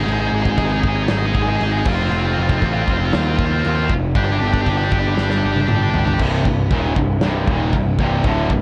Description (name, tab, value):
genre	heavy metal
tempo	117 BPM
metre	4/4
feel	straight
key	C minor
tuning	A4 = 440 Hz
part	tight distorted guitar	riff	0.0-8.6 s	C2 to Ab4	-23 LUFS	equal	distortion
part	fuzz picked electric bass	bass	0.0-8.6 s	C1 to Eb2	-22 LUFS	equal	overdrive
part	big rock drum kit	drums	0.1-8.6 s	crash cymbal, kick drum, snare drum, toms	-24 LUFS	equal	none
room	light reverb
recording	worn, warbling old tape, cassette tape, warbly pitch drift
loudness	-18 LUFS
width	mono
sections	0.0-6.2 A section; 6.2-8.6 B section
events	drum fill 5.2-6.2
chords	0.0 Ab5; 1.9 F5; 4.2 G5; 6.2 Cm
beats	| 0.07 0.58 1.09 1.60 | 2.12 2.63 3.14 3.65 | 4.16 4.67 5.18 5.69 | 6.20 6.72 7.23 7.74 | 8.25